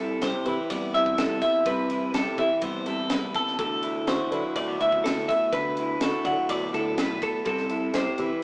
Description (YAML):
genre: math rock and midwest emo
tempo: 124 BPM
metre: 4/4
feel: straight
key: D mixolydian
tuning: A4 = 439 Hz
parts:
  - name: electric guitar through a small old amp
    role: accompaniment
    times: 0.0-8.4 s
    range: A2 to G4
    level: -29 LUFS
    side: equal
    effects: warbly pitch drift
  - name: twelve-string electric guitar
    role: arpeggios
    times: 0.0-8.4 s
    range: A4 to F#5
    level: -26 LUFS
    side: equal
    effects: spring reverb
  - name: picked electric bass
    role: bass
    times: 0.0-8.3 s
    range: B1 to D3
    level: -34 LUFS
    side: equal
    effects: none
  - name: crisp fusion drum kit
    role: drums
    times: 0.2-8.3 s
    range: kick drum, ride cymbal, snare drum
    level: -32 LUFS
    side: equal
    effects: none
room: moderate stone room reverb, RT60 1.3 s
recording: rough rehearsal-room recording, warm saturation, small speaker sound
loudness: -23 LUFS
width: side -30 dB against mid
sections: 0.0-8.4 A section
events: none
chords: 0.0 Am9/C; 3.6 D69; 7.5 Am9/C